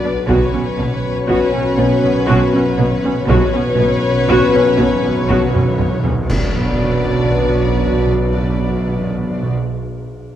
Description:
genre	cinematic, suspense film score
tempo	60 BPM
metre	3/4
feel	straight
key	B minor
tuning	A4 = 437 Hz
part	dark symphonic violin section	melody	0.0-9.5 s	C#5 to D5	-25 LUFS	left 4 dB	none
part	warm symphonic violin section	second line	0.0-9.5 s	B4	-22 LUFS	left 5 dB	none
part	dark symphonic viola section	accompaniment	0.0-9.5 s	B3 to F#4	-22 LUFS	equal	none
part	dark French horn section	sustained chords	0.0-9.5 s	B3 to D4	-23 LUFS	left 3 dB	none
part	dark trombone section	sustained chords	0.0-9.5 s	F#2 to F#3	-24 LUFS	right 2 dB	none
part	glassy FM pad	sustained chords	0.0-9.5 s	F#4 to F#5	-28 LUFS	right 1 dB	none
part	warm symphonic cello section	riff	0.0-6.1 s	B2	-22 LUFS	right 1 dB	none
part	rich symphonic cello section	bass	0.0-9.5 s	B2	-23 LUFS	right 3 dB	none
part	swarming drone	drone	0.0-9.5 s	B1	-27 LUFS	equal	none
part	dark grand piano	texture	0.0-6.3 s	none	barely audible	none	none
part	dark symphonic double bass section	bass	0.3-9.5 s	B1	-22 LUFS	right 3 dB	none
part	taiko ensemble	drums	0.3-8.3 s	none	-24 LUFS	right 1 dB	none
part	timpani	percussion	0.3-9.6 s	B2	-22 LUFS	right 1 dB	none
part	clash cymbals and concert bass drum	percussion	6.3-8.3 s	none	-26 LUFS	equal	none
part	impact	sound effects	6.3-9.6 s	none	-28 LUFS	right 1 dB	none
room	moderate scoring stage reverb, RT60 1.9 s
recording	worn, warbling old tape, cassette tape, warbly pitch drift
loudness	-13 LUFS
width	side -11 dB against mid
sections	0.0-6.3 A section; 6.3-9.3 B section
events	timpani fill 0.3-6.3; drum fill 5.5-6.3; band accent 6.3-7.3; impact 6.3-9.3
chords	0.3 F#sus4/B; 6.3 Bm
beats	| 0.30 1.30 2.30 | 3.30 4.30 5.30 | 6.30 7.30 8.30

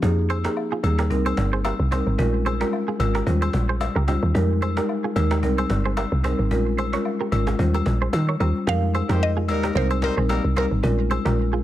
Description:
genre	afrobeats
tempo	111 BPM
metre	4/4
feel	swing 55% on 16ths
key	F minor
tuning	A4 = 440 Hz
part	marimba with medium mallets	accompaniment	0.0-11.4 s	G3 to C5	-25 LUFS	left 2 dB	none
part	woody log drum bass	bass	0.0-11.6 s	G1 to Eb3	-22 LUFS	equal	none
part	cajon	drums	0.0-11.4 s	none	-34 LUFS	equal	none
part	clean electric guitar	riff	0.3-11.6 s	Eb4 to Db5	-30 LUFS	right 6 dB	tape echo
part	agogo bells and woodblock	percussion	0.3-11.2 s	none	-32 LUFS	left 8 dB	none
part	mallet-like synth pluck	melody	8.7-11.1 s	Bb4 to F5	-29 LUFS	equal	chorus, tape echo
part	clear horn section	second line	9.1-10.7 s	G3 to C5	-32 LUFS	left 3 dB	none
room	studio reverb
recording	none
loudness	-20 LUFS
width	side -13 dB against mid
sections	0.0-8.7 A section; 8.7-11.6 B section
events	none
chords	0.0 Fm11; 1.1 Cm7; 2.2 Bbm7; 3.3 Eb13; 4.3 Fm11; 5.4 Cm7; 6.5 Bbm7; 7.6 Eb13; 8.7 Fm11; 9.8 Cm7; 10.8 Bbm7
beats	| 0.02 0.56 1.10 1.65 | 2.19 2.73 3.27 3.81 | 4.35 4.89 5.43 5.97 | 6.51 7.05 7.59 8.13 | 8.67 9.21 9.75 10.29 | 10.84 11.38

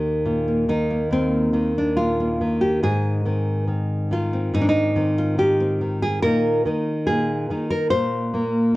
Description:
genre	folk, solo fingerstyle acoustic guitar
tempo	71 BPM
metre	4/4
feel	straight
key	Eb major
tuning	A4 = 436 Hz
part	nylon-string guitar	solo	0.0-8.8 s	Eb2 to C5	-19 LUFS	equal	none
room	light reverb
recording	worn, warbling old tape, cassette tape, warbly pitch drift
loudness	-19 LUFS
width	side -18 dB against mid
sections	0.0-8.8 A section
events	none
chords	0.0 Eb5; 2.8 Ab; 6.2 Bbsus4; 7.9 Bbsus2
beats	0.26 1.12 1.98 | 2.83 3.69 4.54 5.39 | 6.23 7.07 7.91 8.76

